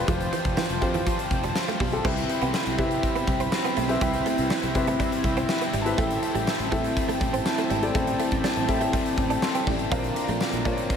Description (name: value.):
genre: 1980s-style pop.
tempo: 122 BPM.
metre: 4/4.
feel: straight.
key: C major.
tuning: A4 = 440 Hz.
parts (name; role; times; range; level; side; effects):
biting overdriven guitar; accompaniment; 0.0-11.0 s; F2 to C4; -34 LUFS; left 3 dB; lush chorus.
warm concert grand piano; accompaniment; 0.0-11.0 s; C4 to C6; -29 LUFS; left 2 dB; none.
chorused pulse-width pad; sustained chords; 0.0-11.0 s; C4 to B5; -29 LUFS; equal; none.
direct-recorded clean electric guitar; riff; 0.1-10.8 s; E3 to D4; -32 LUFS; right 5 dB; ensemble chorus, tape echo.
sustaining fretless electric bass; bass; 0.1-10.8 s; F1 to C3; -30 LUFS; equal; ensemble chorus.
big rock drum kit; drums; 0.1-11.0 s; crash cymbal, hi-hat, kick drum, snare drum, tambourine; -28 LUFS; equal; none.
room: wet huge ambient reverb, RT60 8.0 s.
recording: dreamy mix soaked in reverb.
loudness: -22 LUFS.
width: side -7 dB against mid.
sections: 0.0-2.0 A section; 2.0-11.0 A section.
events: grand piano fill 5.0-6.0.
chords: 0.0 Fsus2; 2.0 Cmaj7; 6.0 Am7; 9.9 Bbadd9.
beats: | 0.08 0.57 1.06 1.55 | 2.05 2.54 3.03 3.52 | 4.01 4.51 5.00 5.49 | 5.98 6.47 6.96 7.46 | 7.95 8.44 8.93 9.42 | 9.92 10.41 10.90.